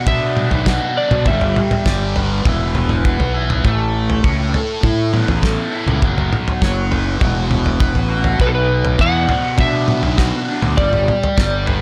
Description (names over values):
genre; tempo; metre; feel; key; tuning
psychedelic rock; 101 BPM; 4/4; straight; unclear; A4 = 441 Hz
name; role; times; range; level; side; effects
electric slide guitar; melody; 0.0-2.1, 8.4-11.8 s; A4 to F#5; -23 LUFS; equal; tape echo
fuzz guitar; riff; 0.0-11.8 s; B2 to D5; -23 LUFS; equal; distortion, phaser
fuzz fingered electric bass; bass; 0.1-11.8 s; E1 to B2; -22 LUFS; equal; overdrive
cloth-damped thuddy drum kit; drums; 0.1-11.8 s; kick drum, snare drum, toms; -20 LUFS; equal; none
room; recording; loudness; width
little or no reverb; none; -17 LUFS; mono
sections
0.0-11.8 A section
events
none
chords
0.0 Bm; 1.3 G6; 3.6 Aadd9; 6.0 F#sus4; 8.4 Bm; 10.8 G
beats
0.06 0.66 | 1.26 1.85 2.45 3.05 | 3.64 4.24 4.83 5.43 | 6.02 6.62 7.21 7.81 | 8.40 9.00 9.59 10.19 | 10.78 11.38